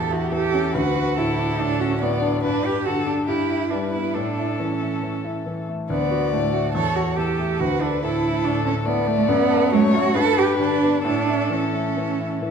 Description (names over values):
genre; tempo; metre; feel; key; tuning
quick classical-period movement for piano trio; 140 BPM; 4/4; rubato; D major; A4 = 440 Hz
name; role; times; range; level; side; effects
rich violin; melody; 0.0-12.5 s; G4 to D5; -26 LUFS; left 8 dB; none
rich cello; second line; 0.0-12.5 s; A3 to A4; -23 LUFS; right 7 dB; none
clear concert grand piano; accompaniment; 0.0-12.5 s; D2 to A4; -23 LUFS; left 2 dB; none
room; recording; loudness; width
wet recital hall reverb, RT60 1.4 s; none; -19 LUFS; side -6 dB against mid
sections
0.0-12.5 A section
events
none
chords
0.0 A7/E; 0.7 D; 2.4 G; 3.3 Em/G; 4.1 A; 5.9 D; 6.8 A7/E; 7.6 D5; 9.3 D/F#; 10.1 G; 11.0 A